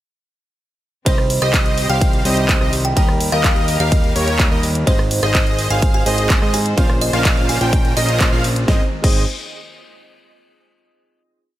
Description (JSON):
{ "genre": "EDM, festival progressive house", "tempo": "126 BPM", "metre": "4/4", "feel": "straight", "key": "Ab major", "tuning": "A4 = 440 Hz", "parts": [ { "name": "kalimba", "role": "melody", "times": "1.1-8.3 s", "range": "C5 to Ab5", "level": "-24 LUFS", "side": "right 1 dB", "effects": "tape echo" }, { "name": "warm baby grand piano", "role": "accompaniment", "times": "1.1-9.2 s", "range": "G3 to C5", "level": "-26 LUFS", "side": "right 2 dB", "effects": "sidechain pumping" }, { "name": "rich chamber string section", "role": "sustained chords", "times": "1.1-8.9 s", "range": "Db3 to C5", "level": "-30 LUFS", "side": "left 3 dB", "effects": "none" }, { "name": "wide unison lead", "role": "arpeggios", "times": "1.1-9.2 s", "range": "Db5 to G5", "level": "-25 LUFS", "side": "equal", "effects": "sidechain pumping, tape echo" }, { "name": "supersaw chords", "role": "riff", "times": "1.1-9.2 s", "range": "Db4 to G5", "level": "-25 LUFS", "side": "right 1 dB", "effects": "sidechain pumping" }, { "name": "fat analog bass", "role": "bass", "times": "1.1-9.3 s", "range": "Ab1 to Ab2", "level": "-21 LUFS", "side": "equal", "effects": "sidechain pumping" }, { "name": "big-room dance drum kit", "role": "drums", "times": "1.1-9.1 s", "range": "crash cymbal, handclaps, hi-hat, ride cymbal, rim click, snare drum", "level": "-22 LUFS", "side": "equal", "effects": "none" }, { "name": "electronic kick drum", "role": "drums", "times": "1.1-9.1 s", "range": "none", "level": "-16 LUFS", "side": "equal", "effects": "none" } ], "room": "digital ambience", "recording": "none", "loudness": "-14 LUFS", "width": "side -14 dB against mid", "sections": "1.1-8.7 drop; 8.7-10.6 final chord", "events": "drop 1.1-8.7; band accent 8.2", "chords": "1.1 Cm; 3.0 Eb; 4.9 Ab; 6.8 Bbmadd9; 8.7 Ab" }